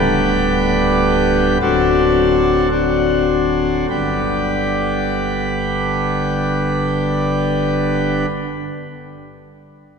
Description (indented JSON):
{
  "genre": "classical, chorale-style piece for pipe organ",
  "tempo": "49-64 BPM",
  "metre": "4/4",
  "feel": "rubato",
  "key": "G major",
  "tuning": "A4 = 441 Hz",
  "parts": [
    { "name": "pipe organ, principal chorus", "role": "solo", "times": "0.0-8.3 s", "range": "D1 to B4", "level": "-15 LUFS", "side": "left 1 dB", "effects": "none" }
  ],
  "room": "wet church reverb, RT60 3.6 s",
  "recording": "none",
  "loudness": "-15 LUFS",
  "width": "side -6 dB against mid",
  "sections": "0.0-3.9 A section; 3.9-8.8 B section",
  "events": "slowing down 0.0-3.9",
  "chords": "0.0 G/D; 1.6 D7; 3.9 G"
}